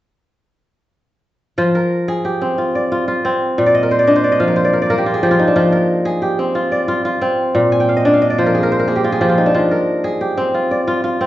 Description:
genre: west african traditional.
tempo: 121 BPM (dotted quarters).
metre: 12/8.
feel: straight.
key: F dorian.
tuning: A4 = 439 Hz.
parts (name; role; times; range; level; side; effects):
kora; arpeggios; 1.6-11.3 s; Bb2 to Ab5; -13 LUFS; equal; none.
room: wet large studio reverb, RT60 0.8 s.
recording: band playing live in one room, nothing above 8.0 kHz.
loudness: -13 LUFS.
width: side -14 dB against mid.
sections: 1.6-11.3 A section.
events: kora fill 3.7-5.6, 7.7-9.5.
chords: 1.6 Fm; 3.6 Bb; 5.6 Fm; 7.5 Bb; 9.5 Fm.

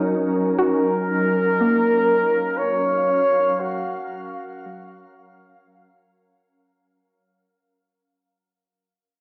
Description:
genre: ambient.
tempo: 59 BPM.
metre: 3/4.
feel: straight.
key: unclear.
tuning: A4 = 441 Hz.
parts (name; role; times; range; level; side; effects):
glassy FM pad; sustained chords; 0.0-6.7 s; Gb3 to F5; -27 LUFS; equal; ensemble chorus, built-in reverb, cassette tape.
dark flugelhorn; melody; 0.6-6.2 s; Gb4 to Db5; -23 LUFS; equal; cassette tape.
soft round pluck; arpeggios; 0.6-7.2 s; Gb3 to Gb4; -26 LUFS; equal; chorus, cassette tape, analog delay.
room: wet spring reverb, RT60 1.8 s, studio reverb.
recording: home recording on cassette, small speaker sound.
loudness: -20 LUFS.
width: mono.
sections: 0.0-6.7 A section.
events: fade-out 0.0-6.7.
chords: 0.0 Ebm7.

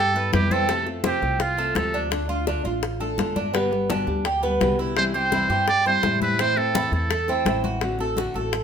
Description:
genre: latin, Cuban son and guajira.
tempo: 168 BPM.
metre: 4/4.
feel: straight.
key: C major.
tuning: A4 = 440 Hz.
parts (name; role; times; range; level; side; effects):
trumpet with metal mute; melody; 0.0-2.0, 5.0-7.6 s; F4 to D5; -23 LUFS; right 2 dB; none.
Cuban tres; arpeggios; 0.0-8.6 s; A3 to C5; -25 LUFS; right 3 dB; none.
upright bass; bass; 0.0-8.6 s; G1 to A2; -29 LUFS; equal; none.
nylon-string guitar; accompaniment; 0.1-8.6 s; B2 to G4; -28 LUFS; left 4 dB; none.
congas; percussion; 0.2-8.6 s; none; -30 LUFS; left 4 dB; none.
bongos; percussion; 0.3-8.6 s; none; -30 LUFS; left 9 dB; none.
room: moderate studio reverb, RT60 0.9 s.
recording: minimal, uncompressed stereo recording.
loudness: -20 LUFS.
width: side -7 dB against mid.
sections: 0.0-8.6 A section.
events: none.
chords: 0.0 Cmaj7; 0.7 F; 2.1 Dm; 3.5 G; 5.0 C; 6.4 Am; 7.8 D7/A.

